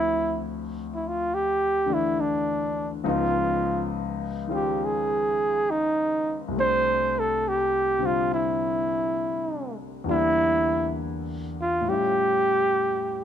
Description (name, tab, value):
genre	jazz ballad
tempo	68 BPM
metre	4/4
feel	swing 66% on 8ths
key	C major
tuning	A4 = 439 Hz
part	breathy flugelhorn	melody	0.0-13.2 s	D4 to C5	-23 LUFS	right 1 dB	none
part	warm concert grand piano	accompaniment	0.0-13.2 s	C2 to E5	-29 LUFS	left 5 dB	none
room	light reverb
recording	close, detailed microphones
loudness	-22 LUFS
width	side -9 dB against mid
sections	0.0-13.2 A section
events	none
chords	0.0 Dm9; 3.0 Db9; 6.5 C69; 10.1 Em7b5; 11.8 A7b13